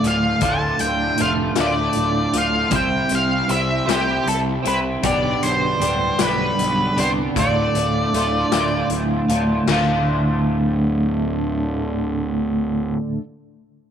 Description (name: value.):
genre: psychedelic rock.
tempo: 52 BPM (dotted quarters).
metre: 6/8.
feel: straight.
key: D dorian.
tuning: A4 = 441 Hz.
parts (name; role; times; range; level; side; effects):
octave-fuzz lead guitar; melody; 0.0-8.9 s; G4 to A5; -22 LUFS; equal; distortion, slapback echo.
twelve-string electric guitar; riff; 0.0-13.2 s; D2 to C5; -20 LUFS; right 1 dB; harmonic tremolo, double-tracked left and right.
fuzz picked electric bass; bass; 0.0-12.9 s; D1 to C2; -26 LUFS; equal; overdrive.
raw garage drum kit; drums; 0.0-9.9 s; china cymbal, hi-hat, kick drum, snare drum; -26 LUFS; left 8 dB; none.
room: light reverb, studio reverb.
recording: 1960s-style stereo.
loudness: -17 LUFS.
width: side -8 dB against mid.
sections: 0.0-9.7 A section; 9.7-12.0 B section.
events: none.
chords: 0.0 Dm; 2.7 C; 5.1 G; 7.4 Dm.